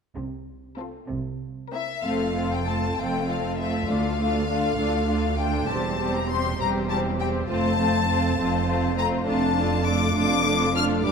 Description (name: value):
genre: quick classical-period movement for string orchestra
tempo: 67 BPM (dotted quarters)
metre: 6/8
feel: rubato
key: F major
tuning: A4 = 440 Hz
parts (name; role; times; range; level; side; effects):
- rich studio cello section; bass; 0.2-11.1 s; D2 to C3; -30 LUFS; right 3 dB; none
- rich studio double bass section; bass; 0.2-11.1 s; E1 to D2; -30 LUFS; right 4 dB; none
- rich studio violin section; melody; 0.8-11.1 s; A4 to F6; -27 LUFS; left 6 dB; none
- rich studio violin section; second line; 0.8-11.1 s; D4 to C5; -30 LUFS; left 3 dB; none
- rich studio viola section; accompaniment; 0.8-11.1 s; G3 to D4; -27 LUFS; equal; none
room: moderate concert hall reverb, RT60 1.9 s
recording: none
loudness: -22 LUFS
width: side -6 dB against mid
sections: 0.2-2.0 A section; 2.0-11.1 B section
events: none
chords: 0.2 F/C; 2.0 F; 3.9 Dm; 5.7 C/E; 7.5 F; 9.3 Dm/F